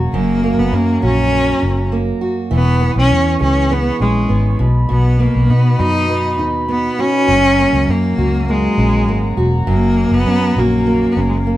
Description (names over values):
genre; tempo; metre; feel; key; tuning
acoustic pop; 101 BPM; 4/4; straight; unclear; A4 = 439 Hz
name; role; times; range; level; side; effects
fingerpicked steel-string acoustic guitar; accompaniment; 0.0-11.6 s; F#2 to G#4; -19 LUFS; right 3 dB; none
warm woodwind section; sustained chords; 0.0-11.6 s; F#4 to C#6; -26 LUFS; equal; none
vintage muted fingered electric bass; bass; 0.0-11.6 s; E1 to B2; -16 LUFS; equal; none
rich cello; melody; 0.1-11.5 s; G#3 to D#4; -16 LUFS; left 1 dB; none
room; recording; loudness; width
wet studio reverb, RT60 0.5 s; band playing live in one room; -12 LUFS; side -14 dB against mid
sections
0.0-11.6 A section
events
none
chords
0.0 F#add9; 2.5 E6; 4.6 B; 7.3 F#add9